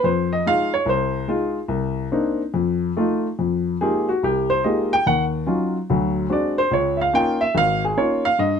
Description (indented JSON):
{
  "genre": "solo jazz",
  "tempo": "144 BPM",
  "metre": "4/4",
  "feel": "swing 66% on 8ths, rubato",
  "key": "F minor from 3.4 s",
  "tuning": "A4 = 442 Hz",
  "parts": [
    { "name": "warm baby grand piano", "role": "solo", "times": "0.0-8.6 s", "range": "Ab1 to G5", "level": "-18 LUFS", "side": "left 1 dB", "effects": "none" }
  ],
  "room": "light reverb",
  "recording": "close, detailed microphones",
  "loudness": "-18 LUFS",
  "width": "side -7 dB against mid",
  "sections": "0.0-3.4 A section; 3.4-8.6 A section",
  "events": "grand piano solo 0.0-3.4, 3.4-8.6",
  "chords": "0.1 Fm7; 1.7 Cm9; 2.5 F7; 3.4 Fm11; 5.1 Ebm9; 5.9 D7#11; 6.7 Db69",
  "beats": "| 0.05 0.46 0.88 1.29 | 1.71 2.12 2.54 2.96 | 3.38 3.81 4.22 4.64 | 5.06 5.47 5.89 6.30 | 6.72 7.13 7.54 7.96 | 8.37"
}